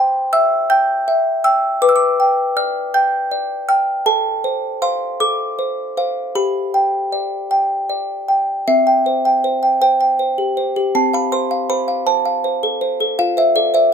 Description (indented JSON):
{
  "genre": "classical, lullaby for music box",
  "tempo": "53 BPM (dotted quarters)",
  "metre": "6/8",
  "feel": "straight",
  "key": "C major",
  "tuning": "A4 = 441 Hz",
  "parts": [
    { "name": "music box", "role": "solo", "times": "0.0-13.9 s", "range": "C4 to G6", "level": "-15 LUFS", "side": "equal", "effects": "none" }
  ],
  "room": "moderate studio reverb, RT60 0.6 s",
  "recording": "none",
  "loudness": "-15 LUFS",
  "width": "side -7 dB against mid",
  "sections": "0.0-8.7 A section; 8.7-13.9 B section",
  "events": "none",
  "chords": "0.0 C; 1.8 G/B; 4.1 F/A; 6.3 G; 8.7 C; 10.9 F/C; 13.2 F"
}